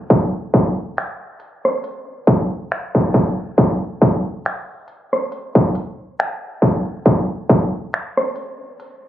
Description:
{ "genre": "R&B", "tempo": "69 BPM", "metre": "4/4", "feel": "swing 54% on 16ths", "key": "none", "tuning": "none", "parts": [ { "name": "industrial drum kit", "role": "drums", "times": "0.1-9.0 s", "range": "finger snaps, hi-hat, kick drum, rim click", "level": "-16 LUFS", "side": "equal", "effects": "distortion" } ], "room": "light reverb", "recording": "recorded on a phone in the room, club reverb, compression, low-pass filter", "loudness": "-17 LUFS", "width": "side -12 dB against mid", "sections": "0.0-9.1 A section", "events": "break 8.8", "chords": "none" }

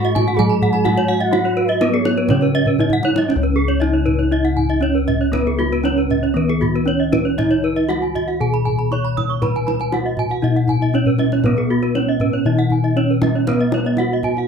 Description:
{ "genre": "Balinese gamelan", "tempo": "118 BPM", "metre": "4/4", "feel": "straight", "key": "Db slendro", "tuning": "A4 = 443 Hz", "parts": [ { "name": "gamelan-type bronze metallophone", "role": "melody", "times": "0.0-14.5 s", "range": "Cb4-45c to Db5", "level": "-19 LUFS", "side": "right 3 dB", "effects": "none" }, { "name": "breathy mellow bansuri", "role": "second line", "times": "0.0-2.9 s", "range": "Db5 to Db6", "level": "-26 LUFS", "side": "right 1 dB", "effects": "none" }, { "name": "gamelan-type bronze metallophone", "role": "accompaniment", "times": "0.0-3.3, 11.4-14.5 s", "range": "Db3 to Cb4-45c", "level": "-25 LUFS", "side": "right 3 dB", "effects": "none" }, { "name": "gamelan-type bronze metallophone", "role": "arpeggios", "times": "0.0-14.4 s", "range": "Ab4+25c to Eb6+30c", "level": "-24 LUFS", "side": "left 1 dB", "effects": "none" }, { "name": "gamelan-type bossed gongs", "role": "bass", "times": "0.0-14.5 s", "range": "Db2 to Cb5-45c", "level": "-21 LUFS", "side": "left 3 dB", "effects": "none" }, { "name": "kendang", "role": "percussion", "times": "0.0-14.4 s", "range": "none", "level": "-24 LUFS", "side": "equal", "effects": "none" }, { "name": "gamelan-type bronze metallophone", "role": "arpeggios", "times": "0.2-14.5 s", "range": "Gb4-35c to Db6", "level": "-26 LUFS", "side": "left 1 dB", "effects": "none" } ], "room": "little or no reverb", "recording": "close, detailed microphones", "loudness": "-15 LUFS", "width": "side -6 dB against mid", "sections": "0.0-3.3 A section; 3.3-14.5 B section", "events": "drum fill 2.7-3.3, 11.1-11.4", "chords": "none" }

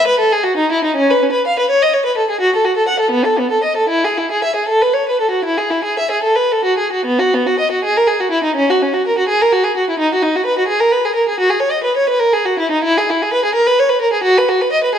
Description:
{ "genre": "classical, baroque-style suite movement for unaccompanied violin", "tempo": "68-87 BPM (dotted quarters)", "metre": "12/8", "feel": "rubato", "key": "E major, B major from 7.1 s", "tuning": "A4 = 441 Hz", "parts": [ { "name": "rich violin", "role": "solo", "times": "0.0-15.0 s", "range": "B3 to F#5", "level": "-13 LUFS", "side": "equal", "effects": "none" } ], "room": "moderate recital hall reverb, RT60 1.5 s", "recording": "dark, warm production", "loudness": "-13 LUFS", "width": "side -8 dB against mid", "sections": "0.0-7.1 A section; 7.1-15.0 A section", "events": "none", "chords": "none" }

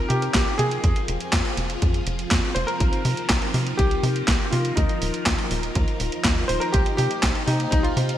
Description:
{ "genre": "italo disco", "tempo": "122 BPM", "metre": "4/4", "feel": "straight", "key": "C minor", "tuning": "A4 = 440 Hz", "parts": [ { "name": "warm electric grand piano", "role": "melody", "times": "0.0-8.2 s", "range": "Eb4 to C5", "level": "-27 LUFS", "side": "left 1 dB", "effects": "lush chorus, digital delay" }, { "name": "string machine, full ensemble", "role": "sustained chords", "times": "0.0-8.2 s", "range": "F3 to C5", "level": "-30 LUFS", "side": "equal", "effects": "phaser, ensemble chorus, vintage 12-bit sampler grit" }, { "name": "tight sequencer bass", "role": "bass", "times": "0.0-8.2 s", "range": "Eb1 to C3", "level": "-24 LUFS", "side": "equal", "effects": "none" }, { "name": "gated 80s digital drum machine", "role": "drums", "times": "0.1-8.2 s", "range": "handclaps, hi-hat, snare drum", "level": "-26 LUFS", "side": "equal", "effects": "gated reverb, gated reverb snare" }, { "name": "electronic kick drum", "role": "drums", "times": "0.3-7.8 s", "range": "none", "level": "-24 LUFS", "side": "equal", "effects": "overdrive" } ], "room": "moderate lush hall reverb, RT60 2.3 s", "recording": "bright 1980s-style digital production", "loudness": "-20 LUFS", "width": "side -12 dB against mid", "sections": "0.0-8.2 A section", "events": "none", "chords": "0.0 Cm7; 0.8 Fm; 2.8 Cm7; 4.8 Ebsus2; 6.7 Cm7" }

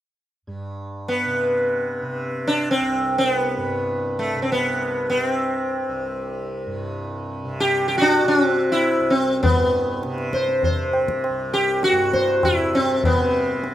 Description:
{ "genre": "indian classical, Hindustani", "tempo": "free time", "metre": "none", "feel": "none", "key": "C raga yaman", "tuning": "A4 = 442 Hz", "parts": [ { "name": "tanpura", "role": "drone", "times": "0.5-13.7 s", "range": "C2 to C3", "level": "-29 LUFS", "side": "right 1 dB", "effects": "none" }, { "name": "sitar", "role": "melody", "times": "1.1-13.7 s", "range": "A3 to C5", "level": "-19 LUFS", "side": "equal", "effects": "none" }, { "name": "tabla", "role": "percussion", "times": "9.4-13.7 s", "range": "none", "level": "-24 LUFS", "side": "left 1 dB", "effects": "none" } ], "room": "wet studio reverb, RT60 0.5 s", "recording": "none", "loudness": "-19 LUFS", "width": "side -12 dB against mid", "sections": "0.5-9.4 A section; 9.4-13.7 B section", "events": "none", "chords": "none" }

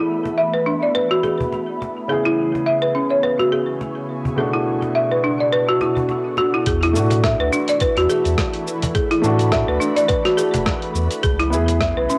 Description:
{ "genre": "organic downtempo", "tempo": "105 BPM", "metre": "4/4", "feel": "swing 56% on 16ths", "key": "E mixolydian", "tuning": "A4 = 440 Hz", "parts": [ { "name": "felt-muted upright piano", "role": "accompaniment", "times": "0.0-12.2 s", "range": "B2 to G#4", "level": "-28 LUFS", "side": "equal", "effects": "sidechain pumping, cassette tape, tape echo" }, { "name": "ethereal airy pad", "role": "sustained chords", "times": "0.0-12.2 s", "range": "B2 to C#6", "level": "-30 LUFS", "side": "equal", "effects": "ensemble chorus, built-in reverb, sidechain pumping, cassette tape" }, { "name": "folk marimba with hard mallets", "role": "arpeggios", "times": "0.0-12.2 s", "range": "C#4 to E5", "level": "-21 LUFS", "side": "equal", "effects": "cassette tape, tape echo" }, { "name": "cajon", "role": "percussion", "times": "0.3-12.2 s", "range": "none", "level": "-30 LUFS", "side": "equal", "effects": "none" }, { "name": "warm sub bass", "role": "bass", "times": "6.7-12.1 s", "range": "E1 to A2", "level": "-23 LUFS", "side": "equal", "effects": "sidechain pumping" }, { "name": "dusty soul sampler-style drum kit", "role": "drums", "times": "6.7-12.2 s", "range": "hi-hat, rim click, shaker", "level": "-29 LUFS", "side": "equal", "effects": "cassette tape" }, { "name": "electronic kick drum", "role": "drums", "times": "6.7-11.9 s", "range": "none", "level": "-26 LUFS", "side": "equal", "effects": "cassette tape" } ], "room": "moderate spring reverb, RT60 1.5 s, small room ambience", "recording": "home recording on cassette", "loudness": "-19 LUFS", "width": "mono", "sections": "0.0-6.7 A section; 6.7-12.2 B section", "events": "filter sweep on ambient pad 0.0-6.7", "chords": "0.0 Esus4; 2.1 C#m7; 4.4 Bmadd9; 6.7 Esus4; 11.2 C#m7" }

